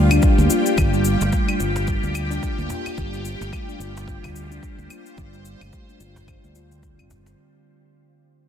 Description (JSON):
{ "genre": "organic downtempo", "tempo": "109 BPM", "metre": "4/4", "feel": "swing 58% on 16ths", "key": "unclear", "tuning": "A4 = 441 Hz", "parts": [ { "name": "bowed-like drone", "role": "sustained chords", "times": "0.0-7.4 s", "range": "G3 to G5", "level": "-28 LUFS", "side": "equal", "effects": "built-in reverb, phaser, sidechain pumping" }, { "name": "fretless electric bass", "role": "bass", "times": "0.0-7.3 s", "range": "G1 to D2", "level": "-22 LUFS", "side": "equal", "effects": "sidechain pumping" }, { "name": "steel tongue drum", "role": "arpeggios", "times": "0.1-7.2 s", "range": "D3 to F4", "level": "-25 LUFS", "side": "left 1 dB", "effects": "tape echo" }, { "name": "claves and cabasa", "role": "drums", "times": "0.1-7.4 s", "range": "none", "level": "-29 LUFS", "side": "left 5 dB", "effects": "overdrive" }, { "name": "electronic kick drum", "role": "drums", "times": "0.2-7.0 s", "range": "none", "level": "-22 LUFS", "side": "equal", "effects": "overdrive" }, { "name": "cajon", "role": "percussion", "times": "1.2-7.4 s", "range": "none", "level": "-40 LUFS", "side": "right 2 dB", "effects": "none" } ], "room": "light reverb, digital ambience", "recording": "dense, heavily limited modern master", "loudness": "-18 LUFS", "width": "side -9 dB against mid", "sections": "0.0-7.4 A section", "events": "fade-out 0.0-7.4", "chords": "0.0 G7(no3)" }